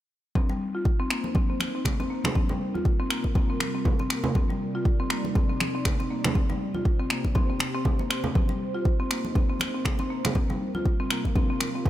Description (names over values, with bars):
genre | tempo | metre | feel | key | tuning
afro house | 120 BPM | 4/4 | swing 57% on 16ths | C minor | A4 = 439 Hz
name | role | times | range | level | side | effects
ethereal airy pad | sustained chords | 0.7-11.9 s | C3 to D5 | -35 LUFS | right 3 dB | ensemble chorus, built-in reverb, sidechain pumping
buzzing marimba with medium hard mallets | arpeggios | 0.4-11.8 s | G3 to F4 | -31 LUFS | left 2 dB | sidechain pumping, low-pass filter, digital delay
electronic kick drum | drums | 0.4-11.9 s | none | -24 LUFS | equal | overdrive
congas | percussion | 0.4-11.9 s | none | -32 LUFS | right 2 dB | none
electronic finger snaps | drums | 1.1-11.7 s | none | -30 LUFS | equal | overdrive
room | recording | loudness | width
light reverb, digital ambience | none | -24 LUFS | side -13 dB against mid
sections
0.4-11.9 A section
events
filter sweep on ambient pad 0.4-11.9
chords
0.4 Cm7; 2.4 Gm7/C; 4.4 Ebmaj7/C; 6.4 C5; 8.4 Cm7; 10.4 Gm7/C